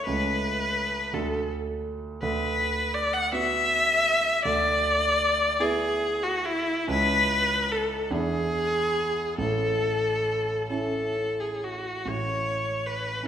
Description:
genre	classical, romantic duo for viola and grand piano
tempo	42-56 BPM (dotted quarters)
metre	6/8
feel	rubato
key	A major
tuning	A4 = 440 Hz
part	clear viola	melody	0.0-13.3 s	E4 to F#5	-24 LUFS	left 1 dB	none
part	warm concert grand piano	accompaniment	0.0-13.3 s	A1 to F#4	-30 LUFS	right 2 dB	none
room	wet recital hall reverb, RT60 1.6 s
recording	recorded in a church or concert hall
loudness	-23 LUFS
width	side -9 dB against mid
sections	0.0-12.1 A section; 12.1-13.3 A section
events	none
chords	0.1 A/C#; 1.1 D; 2.2 Bm/D; 4.4 E5/D; 6.9 C#m7; 8.1 E7; 9.4 A

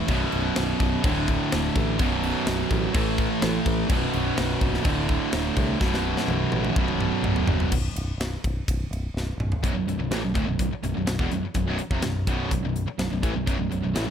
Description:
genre	hard rock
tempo	126 BPM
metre	4/4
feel	straight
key	B minor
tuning	A4 = 440 Hz
part	cranked stack guitar	riff	0.0-14.1 s	B1 to A3	-29 LUFS	right 11 dB	overdrive
part	high-gain distorted guitar	riff	0.0-14.1 s	B1 to A3	-30 LUFS	left 10 dB	distortion
part	high-gain distorted guitar	riff	0.0-14.1 s	B1 to A3	-29 LUFS	equal	distortion
part	picked electric bass	bass	0.1-14.1 s	B0 to C2	-29 LUFS	equal	none
part	tight metal drum kit	drums	0.1-14.1 s	crash cymbal, hi-hat, kick drum, ride cymbal, snare drum, toms	-27 LUFS	equal	none
room	small room ambience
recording	none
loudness	-22 LUFS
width	side -8 dB against mid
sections	0.0-7.7 A section; 7.7-9.6 B section; 9.6-14.1 C section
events	drum fill 5.8-7.7, 9.2-9.6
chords	0.1 B5; 1.0 D5; 2.0 B5; 2.9 A5; 3.9 B5; 4.9 D5; 5.8 B5; 7.7 N.C.; 9.6 B5

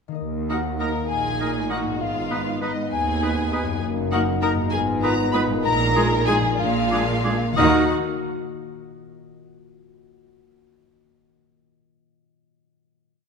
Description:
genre	cinematic, playful, whimsical film cue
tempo	60-67 BPM (dotted quarters)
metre	6/8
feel	straight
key	Eb minor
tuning	A4 = 440 Hz
part	concert harp	arpeggios	0.1-7.9 s	Gb2 to Gb5	-30 LUFS	left 7 dB	none
part	dark French horn section	sustained chords	0.2-7.8 s	Ab3 to Eb4	-27 LUFS	left 1 dB	none
part	dark studio double bass section	bass	0.2-7.9 s	Gb1 to Eb2	-29 LUFS	right 4 dB	none
part	warm studio cello section	bass	0.2-7.9 s	Eb2 to Eb3	-28 LUFS	right 4 dB	none
part	celesta	melody	0.5-7.9 s	Eb5 to Cb6	-29 LUFS	left 4 dB	none
part	rich symphonic violin section	melody	0.5-7.9 s	Eb5 to Cb6	-29 LUFS	left 3 dB	none
part	bright concert flute	second line	0.5-7.9 s	D6 to Eb6	-31 LUFS	left 2 dB	none
part	clear oboe	second line	0.5-7.8 s	Ab4 to Cb5	-32 LUFS	right 3 dB	none
part	warm clarinet	second line	0.5-7.8 s	Eb4 to F4	-33 LUFS	right 1 dB	none
part	warm studio violin section	second line	0.5-7.9 s	Eb4 to Cb5	-29 LUFS	left 1 dB	none
part	rich studio viola section	accompaniment	0.5-7.9 s	Ab3 to Eb4	-30 LUFS	right 2 dB	none
room	moderate scoring stage reverb, RT60 1.9 s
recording	minimal, uncompressed stereo recording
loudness	-20 LUFS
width	side -5 dB against mid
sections	0.2-7.6 A section; 7.6-9.5 final chord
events	none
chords	0.2 Eb5; 2.0 Abm; 3.8 Ebm/Gb; 4.7 Fm7b5/Ab; 5.6 Bb7sus4; 6.6 Bb7; 7.6 Ebm

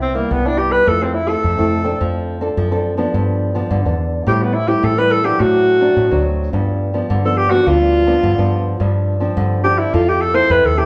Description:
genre	samba and choro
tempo	106 BPM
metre	4/4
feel	straight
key	unclear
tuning	A4 = 439 Hz
part	warm alto saxophone	melody	0.0-10.9 s	Bb3 to C5	-17 LUFS	equal	none
part	nylon-string guitar	accompaniment	0.0-10.9 s	G2 to A4	-23 LUFS	equal	none
part	overdriven fingered electric bass	bass	0.0-10.9 s	C2 to A2	-22 LUFS	equal	none
room	moderate large studio reverb, RT60 1.1 s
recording	band playing live in one room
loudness	-16 LUFS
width	mono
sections	0.0-10.9 A section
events	alto saxophone solo 0.0-10.9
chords	0.0 Cmaj7; 0.9 Fmaj7; 2.0 Dm7/F; 3.1 G7; 4.3 Am7; 5.4 D7/A; 6.5 G7; 8.8 G7sus4; 9.9 Fmaj7

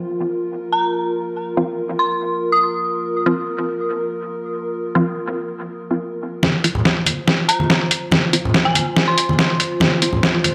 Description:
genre	deep dubstep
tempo	142 BPM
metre	4/4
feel	half-time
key	unclear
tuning	A4 = 440 Hz
part	dark analog pad	sustained chords	0.0-10.5 s	F4 to C5	-27 LUFS	equal	chorus
part	dark detuned synth bell	melody	0.7-3.1, 7.5-9.7 s	Ab5 to Eb6	-24 LUFS	equal	chorus, tremolo, dub echo
part	filtered dub chord stab	stabs	1.6-10.1 s	F3 to F4	-25 LUFS	equal	phaser, dub echo
part	electronic kick drum	drums	6.4-10.3 s	none	barely audible	none	none
part	trip hop sampler-style drum kit	drums	6.4-10.5 s	hi-hat, snare drum	-18 LUFS	equal	none
part	congas	percussion	6.4-10.5 s	none	-25 LUFS	equal	dub echo
room	moderate echo chamber reverb, RT60 1.4 s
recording	dry, gritty hardware recording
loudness	-19 LUFS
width	mono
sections	0.0-6.4 A section; 6.4-10.5 B section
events	build-up 6.4-10.5; drum fill 6.4-10.5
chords	0.0 F5

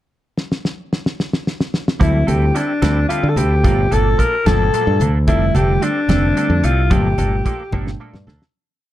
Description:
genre	electric jazz fusion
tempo	73 BPM (dotted quarters)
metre	6/8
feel	straight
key	G dorian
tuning	A4 = 440 Hz
part	damped 70s drum kit	drums	0.4-8.5 s	hi-hat, kick drum, snare drum	-20 LUFS	equal	none
part	growling alto saxophone	melody	2.0-8.0 s	D4 to Bb4	-19 LUFS	left 2 dB	slapback echo
part	bright tine electric piano	accompaniment	2.0-8.5 s	Bb2 to A5	-23 LUFS	right 2 dB	medium stereo tremolo, phaser
part	semi-hollow electric guitar	stabs	2.0-8.4 s	F3 to A4	-27 LUFS	right 4 dB	analog chorus
part	modern bright fingered electric bass	bass	2.0-8.4 s	F1 to D3	-17 LUFS	equal	none
part	congas	percussion	2.0-8.4 s	none	-24 LUFS	left 1 dB	none
room	small room ambience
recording	dark, warm production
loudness	-14 LUFS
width	side -14 dB against mid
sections	0.4-2.0 pickup bar; 2.0-8.5 A section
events	drum fill 0.4-2.0, 7.7-8.5; fade-out 6.9-8.5; tine electric piano fill 7.7-8.5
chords	0.4 N.C.; 2.0 D9sus4; 3.6 Gm9; 5.3 F69; 6.9 Gm9

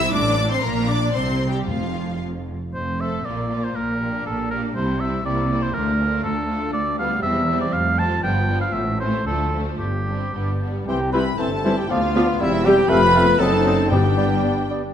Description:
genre	quick classical-period movement for symphony orchestra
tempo	110-124 BPM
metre	2/4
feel	rubato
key	C major from 6.7 s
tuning	A4 = 440 Hz
part	warm studio violin section	melody	0.0-14.8 s	C4 to E6	-32 LUFS	left 2 dB	none
part	rich studio violin section	second line	0.0-14.7 s	A3 to B5	-29 LUFS	left 4 dB	none
part	warm studio viola section	accompaniment	0.0-14.8 s	E3 to G4	-26 LUFS	right 1 dB	none
part	clear studio double bass section	bass	0.0-14.8 s	E1 to D2	-27 LUFS	right 1 dB	none
part	rich studio cello section	bass	0.0-14.8 s	C2 to C3	-26 LUFS	right 1 dB	none
part	timpani	percussion	0.0-2.4, 13.9-14.7 s	F2 to G2	-26 LUFS	left 1 dB	none
part	clear oboe	second line	2.7-14.8 s	G4 to A5	-26 LUFS	right 1 dB	none
part	mellow clarinet	second line	10.9-14.8 s	B3 to C4	-28 LUFS	left 4 dB	none
part	mellow hollow large flute ensemble	second line	10.9-14.7 s	E5 to B5	-26 LUFS	left 2 dB	none
part	mellow bassoon	accompaniment	10.9-14.8 s	E3 to A3	-27 LUFS	right 1 dB	none
part	dark French horn section	sustained chords	10.9-14.7 s	A3 to G4	-26 LUFS	left 5 dB	none
part	warm trumpet	stabs	10.9-14.7 s	E4 to B4	-22 LUFS	right 1 dB	none
room	moderate scoring stage reverb, RT60 1.6 s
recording	none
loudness	-18 LUFS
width	side -9 dB against mid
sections	0.0-2.7 A section; 2.7-10.9 A section; 10.9-14.9 B section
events	none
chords	0.1 Amadd11; 0.6 Bb; 1.1 C5; 1.7 N.C.; 2.7 F; 3.2 Bb; 4.8 C; 5.2 C7; 5.7 Dm; 6.7 G7/D; 7.2 C/E; 7.7 F; 8.2 G7; 8.7 Am; 9.3 Dm; 9.8 Gsus4; 10.9 C; 11.9 Bdim/D; 12.4 C/E; 12.9 F; 13.4 F#dim7; 13.9 G

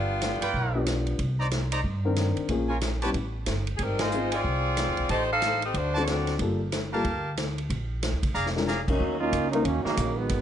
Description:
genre	jazz, big band swing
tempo	184 BPM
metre	4/4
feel	swing 63% on 8ths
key	G minor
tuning	A4 = 436 Hz
part	bright saxophone section	melody	0.0-0.6, 3.8-6.3 s	G3 to F5	-27 LUFS	left 1 dB	none
part	upright bass	bass	0.0-10.4 s	F1 to G2	-29 LUFS	equal	none
part	swinging big-band drum kit	drums	0.2-10.4 s	crash cymbal, hi-hat, kick drum, ride cymbal, snare drum	-32 LUFS	equal	none
part	bright trumpet section	stabs	0.4-8.8 s	Eb4 to Bb5	-32 LUFS	right 1 dB	none
part	dark upright piano	accompaniment	0.7-9.6 s	Eb3 to Bb4	-30 LUFS	left 4 dB	none
part	clear trombone section	second line	8.9-10.4 s	Db3 to F4	-26 LUFS	right 3 dB	none
room	light reverb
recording	nothing above 10.4 kHz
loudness	-24 LUFS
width	side -10 dB against mid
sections	0.0-9.0 A section; 9.0-10.4 B section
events	band accent 4.0; drum fill 8.3-8.7; trombone section solo 9.0-10.4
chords	0.0 G7; 1.2 Cm9; 2.5 Bbm7; 3.1 Gsus2; 3.8 Ab6; 5.1 Am7b5; 5.7 D7; 6.4 Gm9; 7.7 Bb7; 9.0 Ebm7

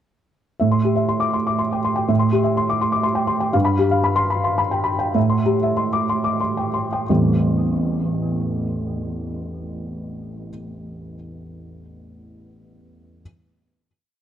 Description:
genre	neoclassical minimalist piano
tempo	88-128 BPM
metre	3/4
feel	rubato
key	A minor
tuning	A4 = 440 Hz
part	felt-muted upright piano	solo	0.6-13.2 s	A1 to D6	-19 LUFS	equal	tape echo
room	light reverb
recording	dark, warm production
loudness	-18 LUFS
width	side -10 dB against mid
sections	0.6-7.1 A section; 7.1-11.0 final chord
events	slowing down 2.8-7.1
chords	0.6 Am7; 3.5 G7; 5.2 Am7

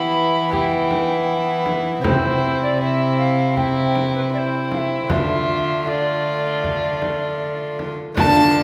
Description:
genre	classical, renaissance-style consort dance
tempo	78 BPM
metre	4/4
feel	straight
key	D dorian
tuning	A4 = 442 Hz
part	alto recorder	melody	0.0-8.6 s	F4 to B5	-27 LUFS	equal	none
part	warm violin	second line	0.0-8.6 s	E4 to A5	-26 LUFS	equal	none
part	lute	accompaniment	0.0-8.6 s	C3 to G4	-28 LUFS	equal	none
part	warm bassoon	accompaniment	0.0-8.6 s	A3 to D4	-28 LUFS	equal	none
part	rich cello	bass	0.0-8.6 s	C3 to E3	-26 LUFS	equal	none
part	frame drum	percussion	0.5-8.5 s	none	-28 LUFS	equal	none
room	wet concert hall reverb, RT60 1.8 s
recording	recorded in a church or concert hall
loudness	-20 LUFS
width	mono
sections	0.0-8.2 A section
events	none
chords	0.0 Em; 2.0 C; 5.1 Dm

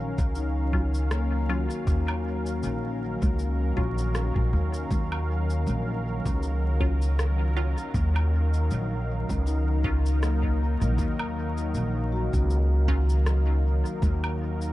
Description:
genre	ambient dub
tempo	79 BPM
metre	4/4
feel	swing 56% on 16ths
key	Eb minor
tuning	A4 = 440 Hz
part	warm analog pad	sustained chords	0.0-14.7 s	Eb3 to F5	-33 LUFS	equal	chorus
part	vibraphone with soft mallets	arpeggios	0.0-14.7 s	Bb3 to Db6	-35 LUFS	left 5 dB	dub echo
part	upright bass	bass	0.0-14.7 s	Bb1 to Eb2	-25 LUFS	equal	none
part	electronic cabasa, rim click and woodblock	drums	0.2-14.7 s	none	-38 LUFS	equal	dub echo
part	electronic kick drum	drums	0.2-14.2 s	none	-28 LUFS	equal	none
part	filtered dub chord stab	stabs	0.7-13.6 s	Gb3 to F4	-37 LUFS	equal	phaser, dub echo
room	digital ambience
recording	vinyl crackle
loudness	-23 LUFS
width	side -16 dB against mid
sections	0.0-14.7 A section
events	none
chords	0.0 Ebm9

